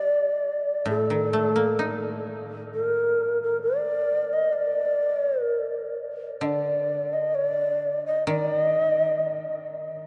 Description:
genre	japanese traditional, Japanese chamber music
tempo	65 BPM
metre	2/4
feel	rubato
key	unclear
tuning	A4 = 440 Hz
part	mellow hollow long shakuhachi	melody	0.0-9.6 s	A4 to Eb5	-26 LUFS	equal	none
part	koto	accompaniment	0.9-3.6, 6.4-10.1 s	A2 to Eb4	-34 LUFS	equal	none
room	wet cathedral reverb, RT60 6.8 s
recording	in a vast, echoing space, nothing above 10.7 kHz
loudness	-25 LUFS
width	mono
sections	0.0-10.1 A section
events	none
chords	none

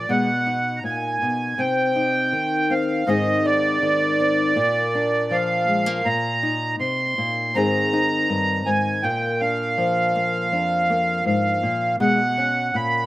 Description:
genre	acoustic folk duo or small band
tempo	81 BPM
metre	4/4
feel	straight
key	unclear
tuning	A4 = 439 Hz
part	accordion	second line	0.0-13.1 s	D5 to C6	-21 LUFS	right 2 dB	none
part	nylon-string guitar	accompaniment	0.0-13.1 s	F2 to Ab4	-23 LUFS	left 2 dB	slapback echo
room	little or no reverb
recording	recorded outdoors, with no room sound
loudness	-19 LUFS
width	side -16 dB against mid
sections	0.1-13.1 A section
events	accordion solo 0.1-13.1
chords	0.1 B; 1.6 Cm; 3.1 Ab; 4.6 Bb; 6.1 Eb5/Bb; 7.5 Ab; 9.0 Bb; 12.0 Bsus2

